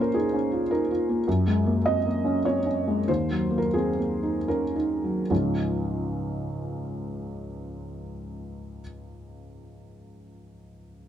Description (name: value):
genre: neoclassical minimalist piano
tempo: 71-109 BPM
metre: 3/4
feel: rubato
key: Db major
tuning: A4 = 442 Hz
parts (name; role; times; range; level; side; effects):
- felt-muted upright piano; solo; 0.0-11.1 s; Db2 to Eb5; -25 LUFS; equal; none
room: light reverb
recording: dark, warm production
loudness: -23 LUFS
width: side -10 dB against mid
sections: 0.0-5.3 A section; 5.3-10.1 B section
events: slowing down 0.4-5.3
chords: 0.0 Bbm; 1.3 Gbadd9; 3.1 Ebm; 5.3 Db